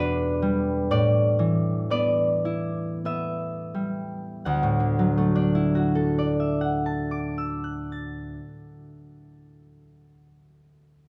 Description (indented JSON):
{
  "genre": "classical, solo harp piece",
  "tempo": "41-66 BPM",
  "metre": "3/4",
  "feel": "rubato",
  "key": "D major",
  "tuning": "A4 = 441 Hz",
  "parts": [
    { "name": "concert harp", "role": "solo", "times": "0.0-9.9 s", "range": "D2 to A6", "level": "-25 LUFS", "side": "equal", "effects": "none" }
  ],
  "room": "moderate recital hall reverb, RT60 1.4 s",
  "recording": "none",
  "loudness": "-25 LUFS",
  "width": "mono",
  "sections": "0.0-4.5 A section; 4.5-8.4 B section",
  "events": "slowing down 0.0-4.5",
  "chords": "0.0 Em11; 0.9 A9sus4; 4.5 Dadd9"
}